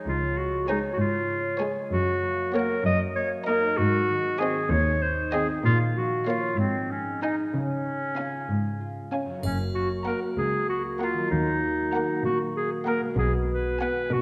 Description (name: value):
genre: cinematic, playful, whimsical film cue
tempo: 64 BPM (dotted quarters)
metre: 6/8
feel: straight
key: Db major, F# major from 9.4 s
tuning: A4 = 438 Hz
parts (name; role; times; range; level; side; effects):
- concert harp; arpeggios; 0.0-14.2 s; Gb2 to Db5; -36 LUFS; equal; none
- bright clarinet; second line; 0.1-14.2 s; C4 to Eb5; -30 LUFS; equal; none
- warm chamber cello section; bass; 0.1-14.2 s; Db2 to Db3; -31 LUFS; equal; none
- rich chamber violin section; melody; 0.7-14.0 s; F5 to Bb5; -43 LUFS; equal; none
- warm chamber violin section; second line; 0.7-14.0 s; Db5 to F#5; -38 LUFS; equal; none
- warm studio viola section; accompaniment; 0.7-14.0 s; Ab3 to Eb4; -36 LUFS; equal; none
- mellow French horn section; sustained chords; 9.4-14.2 s; A#3 to F#4; -33 LUFS; equal; none
- rich chamber double bass section; bass; 9.4-13.8 s; F#1 to D#2; -33 LUFS; equal; none
- triangle; percussion; 9.4-10.6 s; none; -48 LUFS; equal; none
room: wet scoring stage reverb, RT60 1.9 s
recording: none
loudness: -26 LUFS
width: mono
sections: 0.0-9.4 A section; 9.4-14.2 B section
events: none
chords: 0.1 Db; 1.9 Gb; 2.9 Ebm/Gb; 3.8 Ab; 5.6 Bbm; 6.6 Ab5; 7.5 Db; 9.4 F#; 11.3 D#m; 13.2 G#m7/B